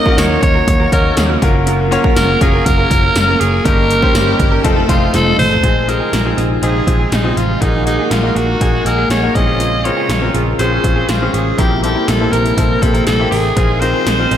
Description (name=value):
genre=1980s-style pop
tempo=121 BPM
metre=4/4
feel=straight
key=unclear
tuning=A4 = 436 Hz
part: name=raspy alto saxophone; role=melody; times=0.0-14.4 s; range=Eb4 to Eb5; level=-17 LUFS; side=equal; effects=analog delay
part: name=bright grand piano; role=accompaniment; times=0.0-14.4 s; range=G2 to Db5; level=-19 LUFS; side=left 3 dB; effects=none
part: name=chorused pulse-width pad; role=sustained chords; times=0.0-14.4 s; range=C3 to F5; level=-21 LUFS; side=right 1 dB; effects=none
part: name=direct-recorded clean electric guitar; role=riff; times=0.1-14.4 s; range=Bb3 to Bb4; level=-24 LUFS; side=right 4 dB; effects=lush chorus, analog delay
part: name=80s electronic pad drums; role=drums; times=0.1-14.4 s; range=hi-hat, kick drum, snare drum, tambourine, toms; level=-17 LUFS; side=equal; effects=gated reverb on snare and toms
part: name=vintage muted picked electric bass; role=bass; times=0.2-14.4 s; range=F1 to Eb2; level=-18 LUFS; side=equal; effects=none
part: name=rich studio violin section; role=second line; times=4.2-5.6 s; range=Eb4 to A4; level=-25 LUFS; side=left 3 dB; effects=analog delay
room=wet lush hall reverb, RT60 1.9 s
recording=dreamy mix soaked in reverb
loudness=-11 LUFS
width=side -10 dB against mid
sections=0.0-5.6 A section; 5.6-14.4 B section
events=drum fill 5.1-5.6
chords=0.0 Ebm7; 1.4 Gbmaj7; 3.7 Eb7/G; 4.6 F7; 5.6 Fm7/Bb; 7.6 Gb69/Bb; 9.4 Dbmaj7/Bb; 11.6 C7/Bb; 13.6 Fm7/Bb